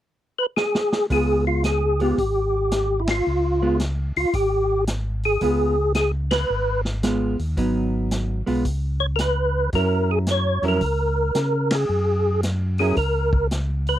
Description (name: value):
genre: soul jazz organ trio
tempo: 111 BPM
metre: 4/4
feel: swing 66% on 8ths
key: Db mixolydian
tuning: A4 = 440 Hz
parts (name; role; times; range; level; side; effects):
- percussive tonewheel organ; melody; 0.4-14.0 s; Fb4 to Db5; -21 LUFS; equal; chorus vibrato, fast rotary speaker
- vintage drum kit; drums; 0.6-13.9 s; hi-hat, kick drum, ride cymbal, snare drum; -28 LUFS; equal; none
- vintage hollow-body jazz guitar; accompaniment; 1.1-13.0 s; Gb3 to Bb4; -24 LUFS; right 2 dB; none
- mellow tonewheel organ; bass; 1.1-14.0 s; Ab1 to Db3; -24 LUFS; equal; chorus vibrato, slow rotary speaker
room: light reverb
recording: dry, close 1970s-style studio recording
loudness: -19 LUFS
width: side -12 dB against mid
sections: 0.0-1.1 A section; 1.1-14.0 B section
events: drum fill 0.6-1.1; band accent 3.0, 6.2, 11.6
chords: 0.0 N.C.; 1.1 Db7; 7.6 Abm7; 8.7 Cbsus2/Db; 9.7 Gb7